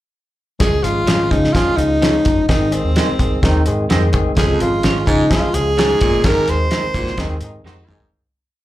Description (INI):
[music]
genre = uptempo 1960s-style soul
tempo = 128 BPM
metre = 4/4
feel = straight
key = Db major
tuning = A4 = 439 Hz
[part]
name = warm tenor saxophone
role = melody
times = 0.6-7.4 s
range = C4 to C5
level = -18 LUFS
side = equal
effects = none
[part]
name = barky tine electric piano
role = accompaniment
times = 0.6-8.1 s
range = Eb3 to Bb4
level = -22 LUFS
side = left 3 dB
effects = auto-pan, slapback echo
[part]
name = vintage muted fingered electric bass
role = bass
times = 0.6-8.1 s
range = G1 to Db3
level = -20 LUFS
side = equal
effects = none
[part]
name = cloth-damped thuddy drum kit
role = drums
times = 0.6-8.1 s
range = hi-hat, kick drum, snare drum, toms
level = -18 LUFS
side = equal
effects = none
[part]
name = electric guitar through a small old amp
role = stabs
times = 1.1-7.8 s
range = C4 to Db5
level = -24 LUFS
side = right 6 dB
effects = lush chorus, slapback echo
[part]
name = growling baritone saxophone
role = riff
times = 4.4-8.1 s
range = F2 to Bb2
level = -22 LUFS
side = right 3 dB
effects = slapback echo
[part]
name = warm horn section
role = second line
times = 7.2-8.1 s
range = C3 to Eb4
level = -37 LUFS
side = equal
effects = slapback echo
[sound]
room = light reverb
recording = live gig heard through the venue's PA, club reverb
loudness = -14 LUFS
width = side -15 dB against mid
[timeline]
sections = 0.6-8.1 verse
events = fade-out 6.2-8.1; band accent 6.2-8.1; drum fill 7.6-8.1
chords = 0.6 Db; 2.5 Ab; 4.4 Db; 6.2 Ab